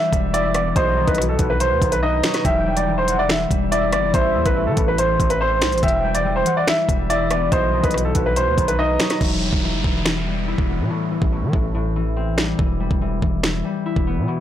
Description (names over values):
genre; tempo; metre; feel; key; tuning
hip hop, drill; 142 BPM; 4/4; half-time; E minor; A4 = 440 Hz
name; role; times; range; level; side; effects
clear concert grand piano; melody; 0.0-9.2 s; A4 to E5; -20 LUFS; right 1 dB; low-pass filter
concert harp; accompaniment; 0.0-14.4 s; A2 to E4; -24 LUFS; left 4 dB; low-pass filter
hard-hitting 808-style bass; bass; 0.1-14.3 s; E1 to E3; -24 LUFS; equal; none
drill drum kit; drums; 0.1-14.1 s; crash cymbal, finger snaps, hi-hat, kick drum, rim click, snare drum; -22 LUFS; equal; soft clipping on snare
warm velvety synth lead; second line; 0.3-9.2 s; B4 to G5; -26 LUFS; right 1 dB; chorus, tape echo
downlifter; sound effects; 9.2-12.6 s; none; -30 LUFS; right 1 dB; none
room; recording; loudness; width
light reverb; blown-out, overdriven recording, overdrive; -17 LUFS; side -11 dB against mid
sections
0.0-9.2 A section; 9.2-14.4 B section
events
break 9.2-14.4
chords
0.0 Em; 0.8 B; 2.4 Em; 4.1 Am7; 5.8 Em; 7.5 B; 9.2 Em; 10.9 Am7; 12.6 Em